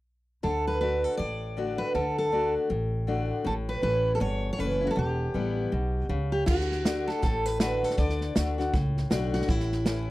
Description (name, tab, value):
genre	honky-tonk and classic country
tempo	159 BPM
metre	4/4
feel	swing 61% on 8ths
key	D major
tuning	A4 = 444 Hz
part	picked steel-string acoustic guitar	melody	0.4-10.1 s	E4 to D5	-29 LUFS	right 1 dB	none
part	picked steel-string acoustic guitar	accompaniment	0.4-10.1 s	E2 to F#4	-32 LUFS	left 4 dB	none
part	upright bass	bass	0.4-10.1 s	E1 to D2	-30 LUFS	equal	none
part	natural country drum kit	drums	6.5-10.0 s	crash cymbal, hi-hat, kick drum, snare drum	-29 LUFS	right 1 dB	none
room	little or no reverb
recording	dry, close 1970s-style studio recording, faint mains hum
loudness	-25 LUFS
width	side -17 dB against mid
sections	0.4-6.5 A section; 6.5-10.1 B section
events	none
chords	0.4 D; 3.5 A; 5.0 Em; 6.5 D; 9.5 A